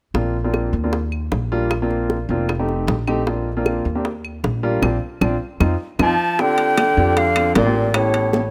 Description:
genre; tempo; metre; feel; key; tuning
Afro-Cuban jazz; 154 BPM; 4/4; straight; Bb major; A4 = 435 Hz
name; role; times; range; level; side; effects
upright bass; bass; 0.1-8.5 s; F1 to F2; -25 LUFS; equal; none
bongos; percussion; 0.1-8.5 s; none; -26 LUFS; equal; none
warm grand piano; accompaniment; 0.2-8.4 s; G3 to A4; -25 LUFS; equal; none
claves; percussion; 0.5-8.1 s; none; -32 LUFS; equal; none
breathy concert flute; melody; 6.0-8.5 s; C#5 to A5; -22 LUFS; equal; none
mellow baritone saxophone; second line; 6.0-8.5 s; A2 to F3; -23 LUFS; equal; none
congas; percussion; 6.4-8.5 s; none; -28 LUFS; equal; none
timbales; percussion; 6.6-8.5 s; none; -28 LUFS; equal; none
room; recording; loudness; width
light reverb, studio reverb; rough home demo mix; -20 LUFS; mono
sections
0.1-6.4 A section; 6.4-8.5 B section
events
band accent 4.8-6.4; drum fill 5.4-6.4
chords
0.1 Bbadd9; 0.9 Ebmaj7; 1.7 Bbadd9; 2.5 F7; 3.3 Bbadd9; 4.1 Ebmaj7; 4.8 Bbadd9; 5.6 F7; 6.4 Bb6; 8.0 A7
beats
| 0.14 0.54 0.93 1.32 | 1.71 2.10 2.49 2.88 | 3.27 3.66 4.05 4.44 | 4.83 5.22 5.61 6.00 | 6.39 6.78 7.17 7.56 | 7.95 8.34

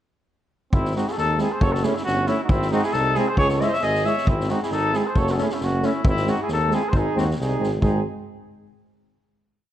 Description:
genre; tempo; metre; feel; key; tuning
balkan folk, Balkan brass band; 135 BPM; 2/4; swing 55% on 16ths; G# phrygian dominant; A4 = 440 Hz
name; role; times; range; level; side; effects
mellow trumpet; melody; 0.7-8.0 s; E4 to E5; -24 LUFS; left 1 dB; slapback echo
clear flugelhorn; second line; 0.7-8.0 s; B#3 to C#5; -29 LUFS; right 4 dB; none
clear tuba; bass; 0.7-8.0 s; F#1 to D#2; -25 LUFS; equal; none
street-band drum kit; percussion; 0.7-8.0 s; kick drum, snare drum; -25 LUFS; equal; none
brilliant trombone; accompaniment; 1.0-8.0 s; B#3 to E4; -31 LUFS; left 5 dB; none
mellow euphonium; accompaniment; 1.0-8.0 s; G#3 to A3; -29 LUFS; right 4 dB; none
room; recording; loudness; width
light reverb; none; -19 LUFS; side -12 dB against mid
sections
0.7-7.8 A section; 7.8-8.7 final chord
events
none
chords
0.7 G#; 1.6 F#m; 2.5 G#; 3.4 C#m; 4.3 G#; 5.2 F#m; 6.0 G#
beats
| 0.72 1.17 | 1.61 2.05 | 2.50 2.94 | 3.38 3.83 | 4.27 4.72 | 5.16 5.61 | 6.05 6.49 | 6.93 7.37 | 7.82

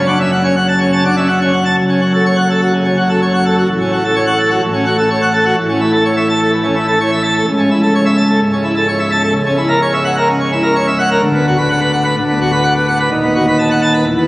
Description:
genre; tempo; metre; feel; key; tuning
classical, organ toccata; 127 BPM; 4/4; straight; F# minor, B minor from 9.3 s; A4 = 440 Hz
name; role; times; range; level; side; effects
pipe organ, plenum; solo; 0.0-14.3 s; C#1 to A5; -11 LUFS; equal; none
room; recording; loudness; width
wet church reverb, RT60 3.0 s; recorded on a phone in the room, club reverb, compression; -11 LUFS; side -19 dB against mid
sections
0.0-1.8 A section; 1.8-14.3 B section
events
none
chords
0.0 F#m; 3.7 F#m/A; 5.6 A; 7.5 A/C#; 9.3 F#7/C#; 11.2 Bm/D; 13.1 B7/D#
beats
0.31 0.80 1.29 | 1.78 2.26 2.73 3.21 | 3.68 4.16 4.63 5.10 | 5.57 6.05 6.52 6.99 | 7.47 7.94 8.41 8.88 | 9.35 9.82 10.29 10.76 | 11.23 11.70 12.17 12.64 | 13.11 13.58 14.06

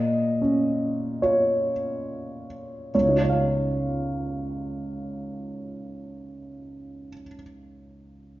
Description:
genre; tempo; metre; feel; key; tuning
classical; 67-77 BPM; 4/4; rubato; Db major; A4 = 440 Hz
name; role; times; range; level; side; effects
dark upright piano; accompaniment; 0.0-8.4 s; Db2 to F5; -24 LUFS; equal; none
room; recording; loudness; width
wet recital hall reverb, RT60 1.4 s; nothing above 7.5 kHz; -23 LUFS; side -16 dB against mid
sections
0.0-2.9 A section; 2.9-6.4 B section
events
slowing down 0.0-2.9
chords
0.0 Bbm; 2.9 Dbadd9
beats
0.41 1.21 2.06 | 2.93 3.80 4.66 5.51

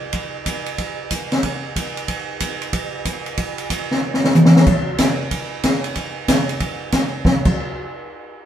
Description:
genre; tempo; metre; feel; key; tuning
jazz; 186 BPM; 4/4; swing 64% on 8ths; none; none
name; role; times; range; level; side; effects
open jazz drum kit; drums; 0.1-7.5 s; crash cymbal, hi-hat, kick drum, ride cymbal, snare drum, toms; -17 LUFS; equal; none
room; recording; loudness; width
light reverb; band playing live in one room; -17 LUFS; side -10 dB against mid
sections
0.0-4.7 A section; 4.7-7.2 B section; 7.2-8.5 C section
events
drum fill 4.0-4.7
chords
none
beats
0.14 0.47 | 0.79 1.11 1.44 1.76 | 2.08 2.40 2.73 3.05 | 3.37 3.70 4.02 4.34 | 4.66 4.99 5.31 5.63 | 5.96 6.28 6.60 6.92 | 7.25

